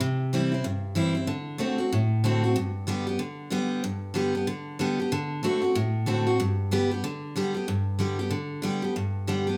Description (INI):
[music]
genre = rock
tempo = 188 BPM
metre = 4/4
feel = swing 61% on 8ths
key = G major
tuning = A4 = 440 Hz
[part]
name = picked steel-string acoustic guitar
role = solo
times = 0.0-9.6 s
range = G2 to G4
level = -27 LUFS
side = equal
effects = none
[sound]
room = moderate large studio reverb, RT60 0.9 s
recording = band playing live in one room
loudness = -27 LUFS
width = mono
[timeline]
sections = 0.0-7.7 A section; 7.7-9.6 B section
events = none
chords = 0.0 C; 1.3 D7; 2.6 G; 5.1 D7; 6.4 G